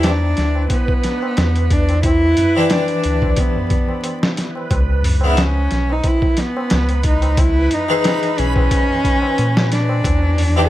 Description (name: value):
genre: trip hop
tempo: 90 BPM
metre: 4/4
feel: swing 54% on 16ths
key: unclear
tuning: A4 = 440 Hz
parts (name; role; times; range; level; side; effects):
- warm cello; melody; 0.0-10.7 s; B3 to A4; -20 LUFS; equal; dub echo
- harpsichord; accompaniment; 0.0-10.7 s; C#3 to B4; -22 LUFS; left 3 dB; tremolo
- round analog bass; bass; 0.0-10.7 s; B1 to A#2; -17 LUFS; equal; none
- boom bap sampler-style drum kit; drums; 0.0-10.6 s; hi-hat, kick drum, snare drum; -19 LUFS; equal; none
- tabla; percussion; 0.0-10.7 s; none; -28 LUFS; equal; none
- backwards swelling texture; texture; 0.0-10.7 s; B4; -29 LUFS; right 2 dB; built-in reverb
- dark analog pad; sustained chords; 10.0-10.7 s; E3 to G5; -32 LUFS; left 1 dB; none
room: studio ambience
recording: vinyl crackle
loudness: -14 LUFS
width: side -14 dB against mid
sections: 0.0-10.7 A section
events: none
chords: 0.0 Em7; 4.7 C#m7; 10.0 Em7